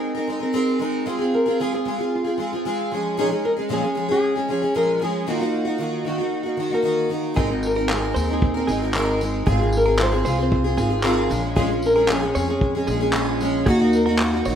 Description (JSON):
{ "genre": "acoustic pop", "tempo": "114 BPM", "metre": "4/4", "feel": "straight", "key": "unclear", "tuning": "A4 = 436 Hz", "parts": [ { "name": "flamenco guitar", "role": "melody", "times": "0.0-14.6 s", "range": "Eb4 to C5", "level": "-25 LUFS", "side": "left 2 dB", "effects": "none" }, { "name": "picked plugged-in steel-string acoustic guitar", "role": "accompaniment", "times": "0.0-14.6 s", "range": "Bb2 to Bb4", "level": "-22 LUFS", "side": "right 1 dB", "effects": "double-tracked left and right" }, { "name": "direct-recorded clean electric guitar", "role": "arpeggios", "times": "7.4-14.6 s", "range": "Ab4 to Db5", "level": "-31 LUFS", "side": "right 4 dB", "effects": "none" }, { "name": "upright bass", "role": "bass", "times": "7.4-14.6 s", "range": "Ab1 to F2", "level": "-23 LUFS", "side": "equal", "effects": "none" }, { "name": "cloth-damped thuddy drum kit", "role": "drums", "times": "7.4-14.6 s", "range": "handclaps, kick drum, tambourine", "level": "-25 LUFS", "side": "equal", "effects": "none" } ], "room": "moderate plate reverb, RT60 1.9 s, small room ambience", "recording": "rough home demo mix", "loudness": "-19 LUFS", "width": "side -8 dB against mid", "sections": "0.0-14.6 A section", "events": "none", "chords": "0.0 Abadd9; 1.1 Fm/Ab; 2.9 Bbm7; 5.3 Ebm; 7.4 Abadd9; 9.5 Fm/Ab; 11.3 Bbm7; 13.7 Ebm" }